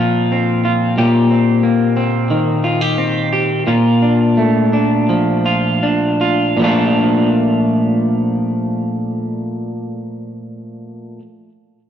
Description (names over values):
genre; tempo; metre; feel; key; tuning
dream pop; 77-91 BPM; 4/4; straight; Bb major; A4 = 441 Hz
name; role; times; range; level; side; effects
electric guitar at the edge of break-up; solo; 0.0-11.2 s; Bb2 to G4; -14 LUFS; equal; wide subtle chorus, ping-pong delay
room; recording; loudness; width
wet scoring stage reverb, RT60 1.8 s, digital ambience; worn, warbling old tape, cassette tape, warbly pitch drift; -13 LUFS; side -9 dB against mid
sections
0.0-6.6 A section; 6.6-9.7 B section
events
slowing down 1.0-6.6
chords
0.0 Bbsus2; 1.0 Cm7/Bb; 3.7 Bbmaj7